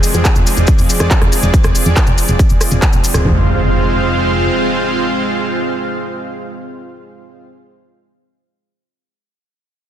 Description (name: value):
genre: uplifting trance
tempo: 140 BPM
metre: 4/4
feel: straight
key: F dorian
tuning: A4 = 439 Hz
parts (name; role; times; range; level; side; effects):
- supersaw pad; sustained chords; 0.0-7.4 s; F3 to F5; -17 LUFS; right 1 dB; sidechain pumping
- big-room dance drum kit; drums; 0.0-3.2 s; handclaps, hi-hat, rim click; -20 LUFS; equal; overdrive, studio ambience
- maracas; percussion; 0.0-3.2 s; none; -24 LUFS; left 3 dB; none
- plucky analog bass; bass; 0.1-4.5 s; Eb1 to F2; -16 LUFS; equal; tube saturation, sidechain pumping
- electronic kick drum; drums; 0.3-2.9 s; none; -12 LUFS; equal; overdrive, studio ambience
- impact; sound effects; 3.2-7.9 s; none; -19 LUFS; equal; none
room: light reverb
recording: dense, heavily limited modern master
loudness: -11 LUFS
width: side -10 dB against mid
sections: 0.0-3.2 A section; 3.2-6.7 B section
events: filter sweep on analog synth bass 0.0-3.2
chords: 0.0 Fm